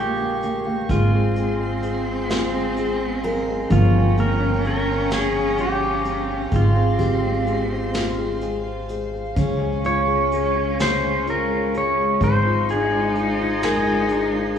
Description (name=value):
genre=acoustic folk-pop ballad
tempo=42 BPM (dotted quarters)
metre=6/8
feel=straight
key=F minor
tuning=A4 = 438 Hz
part: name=pedal steel guitar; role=melody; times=0.0-14.6 s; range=F4 to Db5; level=-24 LUFS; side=equal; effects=none
part: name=warm cello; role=second line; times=0.0-14.6 s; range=Bb3 to Eb4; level=-27 LUFS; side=right 2 dB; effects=none
part: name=felt-muted upright piano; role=accompaniment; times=0.0-14.6 s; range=Db3 to Ab4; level=-27 LUFS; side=left 4 dB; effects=none
part: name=warm studio string section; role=sustained chords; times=0.0-14.6 s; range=Ab3 to Db6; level=-30 LUFS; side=left 1 dB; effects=none
part: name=picked steel-string acoustic guitar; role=arpeggios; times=0.0-14.6 s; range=Ab3 to Bb4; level=-30 LUFS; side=right 1 dB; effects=none
part: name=upright bass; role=bass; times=0.0-14.6 s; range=G1 to Db2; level=-24 LUFS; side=right 1 dB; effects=none
part: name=vintage brush drum kit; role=drums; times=0.4-14.6 s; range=hi-hat, kick drum, snare drum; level=-27 LUFS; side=equal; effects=none
room=wet church reverb, RT60 2.6 s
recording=recorded in a church or concert hall, studio ambience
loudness=-18 LUFS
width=side -8 dB against mid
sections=0.0-14.6 A section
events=none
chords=0.0 Bbm; 0.9 Fm/Ab; 3.7 Gm7b5; 6.5 Fm/Ab; 9.4 Db; 12.2 Fm/Ab